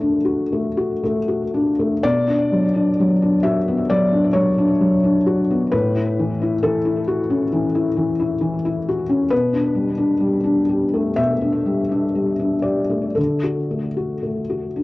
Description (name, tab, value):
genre	neoclassical minimalist piano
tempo	56-68 BPM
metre	4/4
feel	rubato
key	B minor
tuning	A4 = 439 Hz
part	felt-muted upright piano	solo	0.0-14.8 s	A2 to A5	-17 LUFS	left 1 dB	cassette tape, tape echo
room	wet booth ambience, RT60 0.2 s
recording	home recording on cassette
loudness	-17 LUFS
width	side -19 dB against mid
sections	0.0-2.0 A section; 2.0-14.8 B section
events	none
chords	0.0 D; 2.0 Bm; 5.7 A6; 9.3 Gadd9/B; 13.2 D